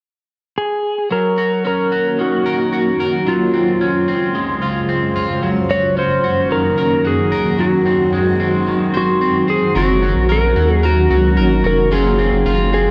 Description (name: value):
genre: dream pop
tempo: 111 BPM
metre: 4/4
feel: straight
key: Gb lydian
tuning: A4 = 440 Hz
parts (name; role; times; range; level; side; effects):
- clean lap steel guitar; melody; 0.6-12.9 s; F4 to Db5; -20 LUFS; equal; tape echo
- granular cloud pad; sustained chords; 2.0-12.9 s; Gb2 to C5; -22 LUFS; equal; built-in reverb
- electric guitar at the edge of break-up; arpeggios; 1.1-12.9 s; Eb3 to C5; -22 LUFS; equal; subtle chorus, tape echo
- saturated sub bass; bass; 9.8-12.9 s; F1 to Eb2; -19 LUFS; equal; none
room: moderate spring reverb, RT60 1.6 s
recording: none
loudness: -16 LUFS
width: mono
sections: 0.0-1.1 A section; 1.1-9.8 B section; 9.8-12.9 C section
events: none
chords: 0.0 N.C.; 1.1 Gb6; 3.3 Dbmaj7/Gb; 5.4 Ebm7/Gb; 7.6 Ab7/Gb; 9.8 Gb6; 11.9 Dbmaj7/Gb